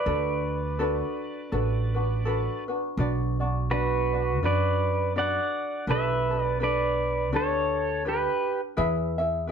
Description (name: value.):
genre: Hawaiian.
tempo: 83 BPM.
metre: 4/4.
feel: swing 58% on 8ths.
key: B minor.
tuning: A4 = 440 Hz.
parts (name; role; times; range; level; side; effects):
pedal steel guitar; melody; 0.0-8.6 s; F#4 to F#5; -27 LUFS; right 1 dB; none.
ukulele; accompaniment; 0.0-9.5 s; D4 to E5; -30 LUFS; left 1 dB; none.
upright bass; bass; 0.1-9.5 s; A1 to F#2; -28 LUFS; right 1 dB; none.
room: moderate studio reverb, RT60 0.8 s.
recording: band playing live in one room.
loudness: -24 LUFS.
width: side -7 dB against mid.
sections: 0.0-3.0 A section; 3.0-9.5 B section.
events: none.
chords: 0.1 D6; 3.0 Bm; 5.9 Gadd9/B; 8.8 E.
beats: | 0.06 0.79 1.51 2.24 | 2.97 3.69 4.42 5.14 | 5.87 6.60 7.32 8.05 | 8.78 9.50.